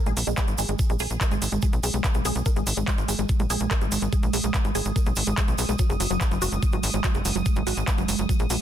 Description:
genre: psychedelic trance.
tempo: 144 BPM.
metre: 4/4.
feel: straight.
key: G# minor.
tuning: A4 = 440 Hz.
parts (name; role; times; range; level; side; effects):
swarming drone; sustained chords; 0.2-8.6 s; G#3; -32 LUFS; right 5 dB; built-in reverb, sidechain pumping.
wide unison pluck; riff; 0.1-8.6 s; F#3 to A#4; -31 LUFS; moving between left 7 dB and right 8 dB; auto-pan, sidechain pumping, ping-pong delay.
tight sequencer bass; bass; 0.1-8.6 s; F#1 to B1; -27 LUFS; equal; none.
drum and bass drum kit; drums; 0.1-8.6 s; handclaps, hi-hat; -30 LUFS; equal; none.
tube shaker; percussion; 0.1-8.6 s; none; -36 LUFS; right 8 dB; none.
electronic kick drum; drums; 0.4-8.4 s; none; -24 LUFS; equal; overdrive.
room: little or no reverb.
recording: dense, heavily limited modern master.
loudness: -22 LUFS.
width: side -10 dB against mid.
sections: 0.0-8.6 A section.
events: filter sweep on synth arpeggio sound 0.0-8.6.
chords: 0.0 G#madd9; 5.8 F#sus2.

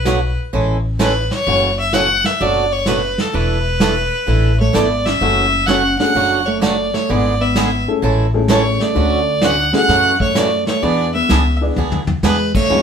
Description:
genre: country, western swing.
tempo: 128 BPM.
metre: 4/4.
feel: swing 68% on 8ths.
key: unclear.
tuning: A4 = 440 Hz.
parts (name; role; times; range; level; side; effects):
clear fiddle; melody; 0.0-12.8 s; A4 to F#5; -17 LUFS; equal; none.
upright bass; bass; 0.0-12.8 s; E1 to F#2; -20 LUFS; left 1 dB; none.
picked swing-style acoustic guitar; accompaniment; 0.1-12.8 s; B2 to A4; -20 LUFS; right 3 dB; none.
vintage brush drum kit; drums; 0.1-12.8 s; brushed snare drum, crash cymbal, hi-hat, kick drum, snare drum, toms; -20 LUFS; right 1 dB; none.
hollow-body jazz guitar; second line; 4.6-12.8 s; G#3 to D4; -21 LUFS; right 1 dB; none.
dark upright piano; accompaniment; 5.2-12.8 s; G#3 to D5; -21 LUFS; left 5 dB; none.
room: moderate studio ambience, RT60 0.5 s.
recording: band playing live in one room.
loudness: -13 LUFS.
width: side -7 dB against mid.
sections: 0.0-12.8 A section.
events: drum fill 11.8-12.2.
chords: 0.0 Bm7; 0.5 Amaj7; 1.5 F#m7; 2.4 Bm7/F#; 3.3 E7sus4; 5.2 F#m7; 6.2 Dmaj7/F#; 7.1 E7/G#; 8.0 Amaj7; 9.0 Dmaj7; 9.9 F#m7; 10.8 E7.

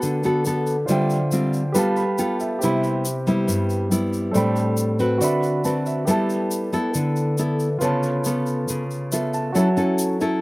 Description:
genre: bossa nova.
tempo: 139 BPM.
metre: 4/4.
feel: straight.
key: unclear.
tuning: A4 = 440 Hz.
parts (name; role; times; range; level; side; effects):
nylon-string guitar; accompaniment; 0.0-10.4 s; G2 to B4; -20 LUFS; equal; none.
warm concert grand piano; accompaniment; 0.0-10.4 s; C4 to B5; -25 LUFS; right 2 dB; none.
tube shaker; percussion; 0.0-10.4 s; none; -32 LUFS; left 2 dB; none.
room: little or no reverb.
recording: recorded outdoors, with no room sound.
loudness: -19 LUFS.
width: side -20 dB against mid.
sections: 0.0-10.4 A section.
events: grand piano fill 1.8-2.6, 5.4-6.1, 8.9-9.5.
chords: 0.0 Gmaj9; 0.9 Dm11; 1.8 G9; 2.6 Cmaj7; 4.4 Am11; 5.2 D13; 6.1 G69; 7.8 C#aug7; 9.5 F#m7.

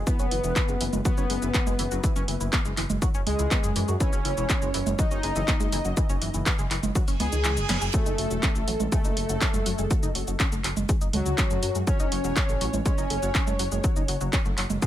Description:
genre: melodic techno.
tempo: 122 BPM.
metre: 4/4.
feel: straight.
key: F# dorian.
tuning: A4 = 440 Hz.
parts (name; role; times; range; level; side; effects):
tight sequenced synth; arpeggios; 0.0-14.9 s; D#3 to G#5; -34 LUFS; equal; chorus, sidechain pumping, dub echo.
dark detuned saw bass; bass; 0.0-14.8 s; E1 to F#2; -29 LUFS; equal; sidechain pumping.
analog synth brass; melody; 0.1-14.2 s; F#3 to G#4; -32 LUFS; left 2 dB; chorus, sidechain pumping, ping-pong delay.
airy dreamy lead; second line; 0.1-14.2 s; F#4 to G#5; -36 LUFS; right 1 dB; chorus, sidechain pumping, dub echo.
electronic kick drum; drums; 0.1-14.9 s; none; -25 LUFS; equal; overdrive.
punchy analog drum machine; drums; 0.1-14.9 s; congas, handclaps, hi-hat, shaker, snare drum; -29 LUFS; right 2 dB; sidechain pumping on perc, sidechain pumping on hats.
reverse cymbal; sound effects; 7.1-7.9 s; none; -35 LUFS; right 6 dB; none.
room: digital ambience.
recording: none.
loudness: -23 LUFS.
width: side -12 dB against mid.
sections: 0.0-14.9 A section.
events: reverse cymbal 7.1-7.9; kick drops out 7.4-7.9; drum fill 7.7.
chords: 0.1 E; 7.9 F#madd9.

